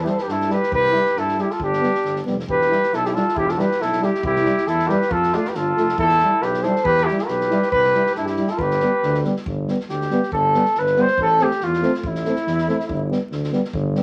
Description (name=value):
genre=balkan folk, Balkan brass band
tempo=138 BPM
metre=2/4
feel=swing 55% on 16ths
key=G mixolydian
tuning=A4 = 439 Hz
part: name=dark cornet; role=melody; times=0.0-9.2 s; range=F4 to C5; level=-22 LUFS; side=equal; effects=none
part: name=warm flugelhorn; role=second line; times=0.0-13.1 s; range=D4 to C5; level=-25 LUFS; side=equal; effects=none
part: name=mellow euphonium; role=accompaniment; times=0.0-14.0 s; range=B3 to F4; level=-29 LUFS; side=equal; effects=none
part: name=mellow tuba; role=bass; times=0.0-14.0 s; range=E1 to G2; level=-29 LUFS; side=equal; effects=none
part: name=warm trombone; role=accompaniment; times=0.1-14.0 s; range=G3 to A3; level=-28 LUFS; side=equal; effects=none
part: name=natural country drum kit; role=percussion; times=0.1-14.0 s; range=kick drum, snare drum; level=-37 LUFS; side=equal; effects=none
room=moderate studio reverb, RT60 0.8 s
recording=vinyl crackle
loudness=-20 LUFS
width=mono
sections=0.0-2.5 A section; 2.5-9.5 A section; 9.5-14.0 B section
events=speeding up 0.0-14.0; flugelhorn solo 9.5-14.0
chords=0.0 Em; 0.7 C; 1.6 G; 2.5 Em; 4.2 C; 5.1 F; 6.0 Em; 7.7 C; 8.6 G; 11.2 Am; 12.9 G